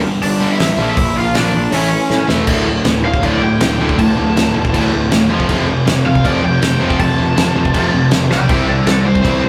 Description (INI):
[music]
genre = punk rock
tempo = 160 BPM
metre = 4/4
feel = straight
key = D minor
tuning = A4 = 439 Hz
[part]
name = thick fuzz guitar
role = riff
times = 0.0-9.5 s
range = D2 to C4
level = -23 LUFS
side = equal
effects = distortion
[part]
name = fuzz picked electric bass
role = bass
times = 0.0-9.5 s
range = D1 to A2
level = -23 LUFS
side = equal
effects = overdrive
[part]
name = cranked stack guitar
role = melody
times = 0.2-9.5 s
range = C#4 to A5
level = -22 LUFS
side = equal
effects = overdrive
[part]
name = loose indie drum kit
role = drums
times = 0.2-9.3 s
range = crash cymbal, hi-hat, kick drum, snare drum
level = -20 LUFS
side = equal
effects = none
[part]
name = distorted electric guitar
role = riff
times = 0.4-9.5 s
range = D2 to C4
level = -22 LUFS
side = equal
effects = none
[part]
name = tight distorted guitar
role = riff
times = 0.4-9.5 s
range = D2 to C4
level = -21 LUFS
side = equal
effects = distortion
[sound]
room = moderate studio reverb, RT60 0.6 s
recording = rough rehearsal-room recording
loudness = -14 LUFS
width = mono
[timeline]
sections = 0.0-2.5 A section; 2.5-9.5 B section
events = drum fill 2.1-2.5, 8.3; overdriven electric guitar solo 2.5-9.5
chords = 0.0 G5; 0.8 Bb; 1.7 A; 2.5 D5; 5.3 F; 8.5 C5